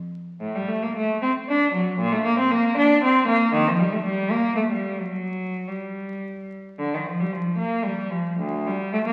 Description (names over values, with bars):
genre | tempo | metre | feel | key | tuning
classical, baroque-style suite movement for unaccompanied cello | 105-118 BPM | 3/4 | rubato | G minor | A4 = 436 Hz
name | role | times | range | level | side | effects
rich cello | solo | 0.4-9.1 s | D2 to D4 | -24 LUFS | equal | none
room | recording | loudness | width
wet scoring stage reverb, RT60 1.5 s | very old 78 rpm record, vinyl crackle | -23 LUFS | mono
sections
0.0-6.8 A section; 6.8-9.1 A section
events
none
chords
none